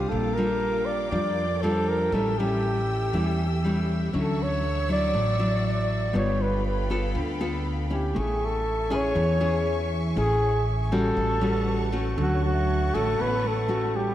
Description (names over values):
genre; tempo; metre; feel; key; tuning
bossa nova; 119 BPM; 4/4; straight; unclear; A4 = 441 Hz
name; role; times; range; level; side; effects
breathy flugelhorn; melody; 0.0-14.1 s; F#4 to D5; -27 LUFS; equal; tape echo
barky tine electric piano; accompaniment; 0.0-2.6, 6.4-8.2, 11.7-14.1 s; F4 to E5; -40 LUFS; right 5 dB; none
nylon-string guitar; accompaniment; 0.0-14.1 s; A2 to A4; -28 LUFS; left 1 dB; none
warm symphonic string section; sustained chords; 0.0-14.1 s; Bb3 to E6; -38 LUFS; left 1 dB; none
upright bass; bass; 0.0-14.1 s; G1 to F2; -28 LUFS; equal; none
warm cello; second line; 12.2-14.1 s; F#3 to B3; -32 LUFS; right 4 dB; none
room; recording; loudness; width
wet lush hall reverb, RT60 2.9 s; dreamy mix soaked in reverb; -23 LUFS; side -12 dB against mid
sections
0.0-12.2 A section; 12.2-14.1 B section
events
none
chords
0.1 Bb6; 2.1 A7; 4.1 Dmaj9; 6.1 G9; 8.2 Amaj7; 11.2 A13; 12.2 Dmaj7